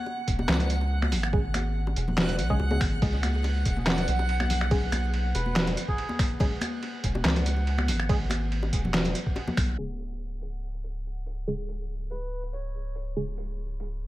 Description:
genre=deep dubstep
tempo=142 BPM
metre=4/4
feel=swing 53% on 16ths, half-time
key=C# minor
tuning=A4 = 440 Hz
part: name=backwards swelling texture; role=texture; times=0.0-9.8 s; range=F#5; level=-36 LUFS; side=right 2 dB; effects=built-in reverb
part: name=bongos and congas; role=percussion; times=0.1-9.6 s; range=none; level=-34 LUFS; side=left 1 dB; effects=dub echo
part: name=soft dub sub bass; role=bass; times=0.3-14.1 s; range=C#1 to C#2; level=-28 LUFS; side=equal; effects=none
part: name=electronic kick drum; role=drums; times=0.3-9.7 s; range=none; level=-27 LUFS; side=equal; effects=overdrive
part: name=trip hop sampler-style drum kit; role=drums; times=0.3-13.9 s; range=finger snaps, handclaps, hi-hat, ride cymbal, snare drum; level=-30 LUFS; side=equal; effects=overdrive, low-pass filter on hats, low-pass filter on snare, low-pass filter on cymbals, low-pass filter on room
part: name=filtered dub chord stab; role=stabs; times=1.3-13.2 s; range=C#3 to G#4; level=-36 LUFS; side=right 1 dB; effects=chorus, dub echo
part: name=melodica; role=melody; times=5.3-6.2, 12.1-13.0 s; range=G#4 to C#5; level=-39 LUFS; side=right 1 dB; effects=dub echo
room=light reverb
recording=vinyl crackle, low-pass filter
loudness=-24 LUFS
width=side -16 dB against mid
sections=0.0-9.8 A section; 9.8-14.1 B section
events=drop 0.0-9.8; band accent 9.6; filter sweep 9.8-14.1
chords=0.0 C#5

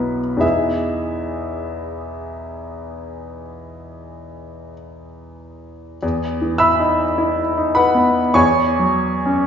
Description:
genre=classical, impressionist solo piano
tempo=37-53 BPM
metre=4/4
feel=rubato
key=E major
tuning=A4 = 439 Hz
part: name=clear baby grand piano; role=solo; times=0.0-9.5 s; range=B1 to E6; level=-17 LUFS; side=equal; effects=none
room=wet recital hall reverb, RT60 1.3 s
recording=heard from further back in the room, nothing above 7.6 kHz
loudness=-16 LUFS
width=side -8 dB against mid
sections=0.0-6.0 A section; 6.0-9.5 A section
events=none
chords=0.4 Emaj7; 6.0 E5; 8.4 F#7(no3)/E

